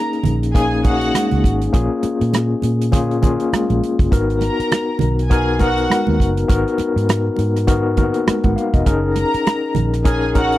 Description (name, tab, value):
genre	lush 1970s-style soul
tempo	101 BPM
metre	4/4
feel	swing 58% on 16ths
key	G# dorian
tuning	A4 = 440 Hz
part	warm studio string section	second line	0.0-10.6 s	F#4 to A#5	-23 LUFS	right 1 dB	none
part	overdriven tine electric piano	accompaniment	0.0-10.6 s	A#3 to F#5	-19 LUFS	left 3 dB	fast tremolo
part	damped 70s drum kit	drums	0.1-10.6 s	hi-hat, kick drum, rim click	-18 LUFS	right 1 dB	none
part	vintage muted fingered electric bass	bass	0.2-10.6 s	E#1 to A#2	-20 LUFS	right 1 dB	none
part	congas	percussion	0.2-10.5 s	none	-24 LUFS	right 6 dB	none
room	little or no reverb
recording	dry, close 1970s-style studio recording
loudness	-15 LUFS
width	side -15 dB against mid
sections	0.0-10.6 A section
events	none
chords	0.0 F#6; 1.7 A#m7; 4.1 G#m7; 8.9 F#6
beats	0.55 1.14 | 1.74 2.33 2.92 3.52 | 4.12 4.71 5.30 5.90 | 6.49 7.09 7.68 8.27 | 8.87 9.46 10.05